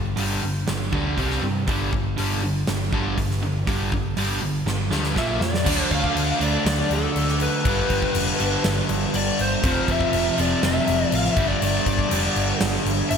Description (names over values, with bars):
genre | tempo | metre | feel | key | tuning
hard rock | 121 BPM | 4/4 | straight | unclear | A4 = 439 Hz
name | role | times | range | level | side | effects
cranked stack guitar | riff | 0.0-13.2 s | F2 to D4 | -27 LUFS | left 8 dB | overdrive, analog chorus
overdriven semi-hollow guitar | riff | 0.0-13.2 s | F2 to D4 | -26 LUFS | right 10 dB | none
picked electric bass | bass | 0.0-13.2 s | F1 to G2 | -26 LUFS | equal | none
huge arena drum kit | drums | 0.2-13.2 s | crash cymbal, hi-hat, kick drum, snare drum | -26 LUFS | equal | gated reverb
lead guitar through a small cranked amp | melody | 5.2-13.2 s | A4 to F5 | -26 LUFS | left 2 dB | overdrive, analog chorus
room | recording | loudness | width
moderate lush hall reverb, RT60 2.1 s | bright 1980s-style digital production | -20 LUFS | side -7 dB against mid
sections
0.0-5.7 A section; 5.7-13.2 B section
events
drum fill 4.7-5.7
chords
0.0 G5; 1.2 C5; 1.7 G5; 5.2 Bb5; 5.7 Dm; 7.7 G; 9.6 F5; 11.4 G5